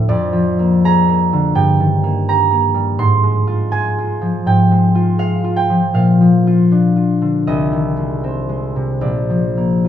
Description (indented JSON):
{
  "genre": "classical, solo harp piece",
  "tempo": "80 BPM",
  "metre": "4/4",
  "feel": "uneven beats, rubato",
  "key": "unclear",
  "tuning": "A4 = 444 Hz",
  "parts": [
    { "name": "concert harp", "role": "solo", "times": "0.0-9.9 s", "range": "Bb1 to C6", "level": "-13 LUFS", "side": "equal", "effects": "none" }
  ],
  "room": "light reverb",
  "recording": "minimal, uncompressed stereo recording",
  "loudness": "-13 LUFS",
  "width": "side -10 dB against mid",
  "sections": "0.0-9.9 A section",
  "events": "none",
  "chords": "0.1 Bb7/F; 1.6 Eb/G; 3.0 Fm/Ab; 6.0 Bb; 7.5 Ab/C; 9.0 Bb",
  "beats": "| 0.06 0.82 1.55 2.27 | 3.00 3.73 4.47 5.20 | 5.95 6.72 7.47 8.23 | 9.03 9.85"
}